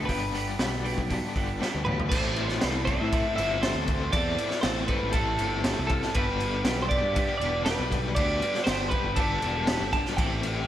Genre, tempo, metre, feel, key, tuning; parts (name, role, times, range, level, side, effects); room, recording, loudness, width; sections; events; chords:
indie rock; 119 BPM; 4/4; straight; A4 = 440 Hz
twelve-string electric guitar; melody; 0.0-10.7 s; A4 to A5; -30 LUFS; right 1 dB; slapback echo
biting overdriven guitar; riff; 0.0-10.7 s; G2 to E4; -34 LUFS; left 6 dB; tremolo, slapback echo
biting overdriven guitar; riff; 0.0-10.7 s; G2 to A4; -35 LUFS; right 6 dB; wide subtle chorus, slapback echo
fuzz picked electric bass; bass; 0.0-10.6 s; E1 to A2; -32 LUFS; equal; overdrive
raw garage drum kit; drums; 0.1-10.5 s; crash cymbal, hi-hat, kick drum, snare drum, toms; -28 LUFS; equal
glockenspiel with hard plastic mallets; second line; 1.9-10.7 s; D6 to F7; -40 LUFS; left 2 dB; slapback echo
moderate lush hall reverb, RT60 1.6 s, small room ambience; big arena sound; -24 LUFS; side -12 dB against mid
0.0-2.1 A section; 2.1-10.7 B section
drum fill 1.6-2.1
0.0 G; 2.1 Am7; 6.2 G